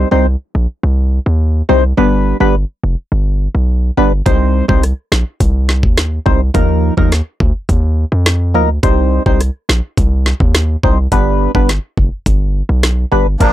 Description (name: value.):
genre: dancehall.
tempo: 105 BPM.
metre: 4/4.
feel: straight.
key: C minor.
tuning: A4 = 440 Hz.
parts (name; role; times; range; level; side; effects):
percussive organ stab; accompaniment; 0.0-13.5 s; F3 to C5; -13 LUFS; equal; chorus, phaser.
hard-hitting 808-style bass; bass; 0.0-13.5 s; F1 to F2; -13 LUFS; equal; none.
island pop drum kit; drums; 4.3-13.5 s; hi-hat, kick drum, rim click, snare drum; -14 LUFS; equal; none.
musette accordion; sustained chords; 13.4-13.5 s; F3 to D4; -13 LUFS; right 2 dB; sidechain pumping.
room: little or no reverb.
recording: dry, gritty hardware recording.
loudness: -11 LUFS.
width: side -13 dB against mid.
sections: 0.0-13.4 A section.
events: none.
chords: 0.0 Cm; 2.0 G; 4.3 Cm; 6.5 Ebsus2; 8.8 Cm; 11.1 G.